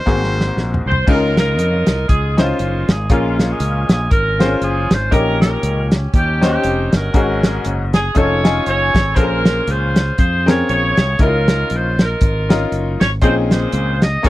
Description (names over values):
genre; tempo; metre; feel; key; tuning
uptempo gospel; 119 BPM; 4/4; swing 58% on 8ths; Db major; A4 = 440 Hz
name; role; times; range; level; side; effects
brilliant trumpet; melody; 0.0-0.9 s; C5; -23 LUFS; equal; none
bright upright piano; accompaniment; 0.1-14.3 s; Ab2 to G#5; -20 LUFS; left 3 dB; none
fingered electric bass; bass; 0.1-14.3 s; F1 to F2; -19 LUFS; equal; none
warm soul drum kit; drums; 0.1-14.3 s; crash cymbal, hi-hat, kick drum, snare drum, toms; -15 LUFS; equal; none
bright saxophone section; melody; 0.9-14.3 s; Ab3 to Eb5; -20 LUFS; right 1 dB; none
room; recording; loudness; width
light reverb; dry, close 1970s-style studio recording, lossy compression artefacts; -13 LUFS; side -16 dB against mid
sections
0.0-1.1 A section; 1.1-14.3 B section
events
drum fill 0.1-1.1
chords
0.1 Ab9; 1.1 Db69; 3.1 Bbm7; 5.1 Eb7/Bb; 7.1 Ab7sus4; 8.2 F7alt; 9.2 Bbm9; 11.2 Db69; 13.2 Bbm11